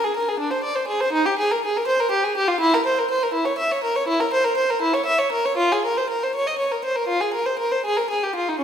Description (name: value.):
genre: classical, baroque-style suite movement for unaccompanied violin.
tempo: 81 BPM (dotted quarters).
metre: 12/8.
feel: rubato.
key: F minor.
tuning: A4 = 440 Hz.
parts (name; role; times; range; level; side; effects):
warm violin; solo; 0.0-8.6 s; Db4 to E5; -19 LUFS; equal; none.
room: wet recital hall reverb, RT60 1.6 s.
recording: recorded in a church or concert hall.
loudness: -19 LUFS.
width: side -8 dB against mid.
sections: 0.0-8.6 A section.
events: none.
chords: none.